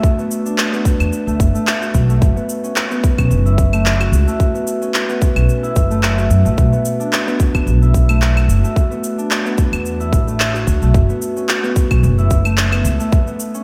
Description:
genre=organic downtempo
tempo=110 BPM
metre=4/4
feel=swing 55% on 16ths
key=B minor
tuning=A4 = 440 Hz
part: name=Celtic harp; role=arpeggios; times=0.0-13.6 s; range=A3 to F#4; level=-22 LUFS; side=equal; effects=tape echo, slapback echo
part: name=electronic cabasa, handclaps and claves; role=drums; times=0.0-13.6 s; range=none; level=-24 LUFS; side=equal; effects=overdrive
part: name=electronic kick drum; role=drums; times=0.0-13.2 s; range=none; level=-18 LUFS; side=equal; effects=overdrive
part: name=upright bass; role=bass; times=1.0-13.0 s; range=F#1 to F#2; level=-17 LUFS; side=equal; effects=tube saturation, sidechain pumping
room=moderate lush hall reverb, RT60 2.5 s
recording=big arena sound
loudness=-16 LUFS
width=mono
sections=0.0-13.6 A section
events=none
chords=0.0 Bm; 2.2 F#m7

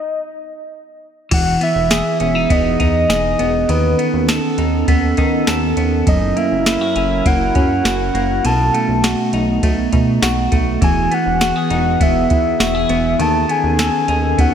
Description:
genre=dream pop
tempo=101 BPM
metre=4/4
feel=straight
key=E major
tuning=A4 = 440 Hz
part: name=soft octave-layered synth lead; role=melody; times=0.0-14.5 s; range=B4 to A5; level=-19 LUFS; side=equal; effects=chorus, digital delay
part: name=warbly tape-like pad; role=sustained chords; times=1.8-14.5 s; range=D#3 to A#4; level=-20 LUFS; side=right 3 dB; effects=chorus, built-in reverb
part: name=semi-hollow electric guitar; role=arpeggios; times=1.3-14.5 s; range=F#2 to A4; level=-20 LUFS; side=left 2 dB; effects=wide subtle chorus, digital delay
part: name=chorused synth bass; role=bass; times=1.3-14.5 s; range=E1 to D#3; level=-21 LUFS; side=equal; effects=none
part: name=soft vintage rhythm box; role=drums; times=1.3-14.5 s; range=crash cymbal, kick drum, ride cymbal, snare drum, tambourine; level=-19 LUFS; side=equal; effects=none
room=moderate lush hall reverb, RT60 2.7 s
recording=bright 1980s-style digital production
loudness=-13 LUFS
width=side -8 dB against mid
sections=0.0-1.3 A section; 1.3-14.5 B section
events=stop 0.0-1.3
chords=0.0 N.C.; 1.3 Emaj7; 3.7 B7/D#; 6.1 F#7; 8.4 B7; 10.8 Emaj7; 13.2 B7/D#

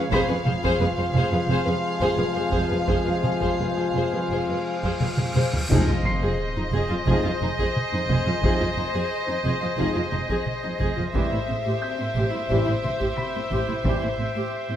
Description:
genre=cinematic, suspense film score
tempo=88 BPM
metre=4/4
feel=straight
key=unclear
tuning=A4 = 440 Hz
part: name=warm chamber violin section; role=melody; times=0.0-14.8 s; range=Eb5 to F5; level=-30 LUFS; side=left 1 dB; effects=none
part: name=warm chamber viola section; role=accompaniment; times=0.0-14.8 s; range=C4 to Ab4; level=-31 LUFS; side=right 1 dB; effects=none
part: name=bright trombone section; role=sustained chords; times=0.0-14.1 s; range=C3 to F3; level=-31 LUFS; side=right 3 dB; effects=none
part: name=dark French horn section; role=sustained chords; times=0.0-14.1 s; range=G3 to F4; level=-31 LUFS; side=left 6 dB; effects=none
part: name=drifting glass-harmonics texture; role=sustained chords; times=0.0-14.8 s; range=G4 to E#5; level=-32 LUFS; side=left 1 dB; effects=chorus, built-in reverb
part: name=dark baby grand piano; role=texture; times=0.0-14.8 s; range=B5 to C7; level=-35 LUFS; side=left 1 dB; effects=none
part: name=dark studio violin section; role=second line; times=0.1-14.8 s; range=B4 to C5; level=-32 LUFS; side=left 3 dB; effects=none
part: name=warm symphonic cello section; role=bass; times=0.1-14.8 s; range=F2 to A2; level=-29 LUFS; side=right 1 dB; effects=none
part: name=warm symphonic double bass section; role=bass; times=0.1-14.2 s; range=F1 to A1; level=-28 LUFS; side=right 3 dB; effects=none
part: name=taiko ensemble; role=drums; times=0.1-14.5 s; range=none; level=-27 LUFS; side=equal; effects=none
part: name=cymbal swell and sub drop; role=sound effects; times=4.7-8.4 s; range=none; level=-30 LUFS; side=equal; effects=none
part: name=timpani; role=percussion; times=5.7-6.7 s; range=F2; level=-28 LUFS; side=left 1 dB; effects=none
room=light reverb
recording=close, detailed microphones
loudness=-21 LUFS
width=side -10 dB against mid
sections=0.0-5.7 A section; 5.7-14.8 B section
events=cymbal swell 4.7-5.7; drum fill 5.0-5.7; impact 5.7-8.4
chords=0.1 Fm; 5.7 Fm7; 11.1 Am7

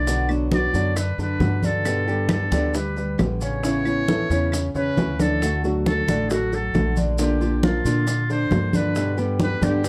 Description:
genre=latin, Cuban son and guajira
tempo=135 BPM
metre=4/4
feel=straight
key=D major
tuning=A4 = 443 Hz
part: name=trumpet with metal mute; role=melody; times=0.0-9.9 s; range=F4 to D5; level=-30 LUFS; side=equal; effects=none
part: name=nylon-string guitar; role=accompaniment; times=0.0-9.9 s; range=B2 to G4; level=-30 LUFS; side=equal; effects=none
part: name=warm concert grand piano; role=arpeggios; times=0.0-9.9 s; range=C#3 to D5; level=-28 LUFS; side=equal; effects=none
part: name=upright bass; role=bass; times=0.0-9.9 s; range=A1 to Bb2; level=-27 LUFS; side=equal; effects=none
part: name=bongos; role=percussion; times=0.1-9.9 s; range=none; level=-32 LUFS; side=equal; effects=none
part: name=congas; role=percussion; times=0.1-9.9 s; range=none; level=-28 LUFS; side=equal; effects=none
part: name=maracas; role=percussion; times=0.1-9.9 s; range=none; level=-40 LUFS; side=equal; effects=none
part: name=claves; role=percussion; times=0.3-4.7 s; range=none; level=-39 LUFS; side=equal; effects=none
room=light reverb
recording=dry, close 1970s-style studio recording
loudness=-22 LUFS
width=mono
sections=0.0-5.4 A section; 5.4-9.9 A section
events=drum fill 5.2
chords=0.1 Bm; 1.9 G; 3.6 Aadd9; 5.4 D; 7.2 Bb; 9.0 G

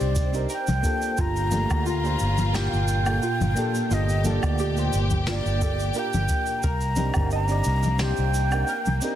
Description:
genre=sunset chillout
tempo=88 BPM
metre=4/4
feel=swing 53% on 16ths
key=G minor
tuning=A4 = 440 Hz
part: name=breathy mellow concert flute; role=melody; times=0.0-9.2 s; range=D5 to Bb5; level=-29 LUFS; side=right 1 dB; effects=ping-pong delay
part: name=soft electric-piano-like synth keys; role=accompaniment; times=0.0-9.2 s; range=A3 to D5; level=-31 LUFS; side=moving between left 3 dB and right 4 dB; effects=chorus, auto-pan, digital delay
part: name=warm studio string section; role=sustained chords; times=0.0-9.2 s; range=Bb2 to G4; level=-32 LUFS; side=equal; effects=vintage 12-bit sampler grit
part: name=soft round pluck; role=arpeggios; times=0.0-9.0 s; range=F4 to Eb5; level=-34 LUFS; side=equal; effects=wide subtle chorus, digital delay
part: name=fretless electric bass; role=bass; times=0.0-9.0 s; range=G1 to D2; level=-24 LUFS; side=equal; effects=none
part: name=shaker, woodblock and snare drum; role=drums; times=0.0-9.2 s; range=none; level=-34 LUFS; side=right 1 dB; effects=none
part: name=electronic kick drum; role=drums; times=0.2-7.3 s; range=none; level=-26 LUFS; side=equal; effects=none
part: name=congas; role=percussion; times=0.7-9.0 s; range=none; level=-31 LUFS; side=left 2 dB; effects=none
room=light reverb, studio ambience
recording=dense, heavily limited modern master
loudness=-21 LUFS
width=side -11 dB against mid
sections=0.0-9.2 A section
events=none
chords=0.0 Cm9; 1.2 Gm9; 6.6 Cm9

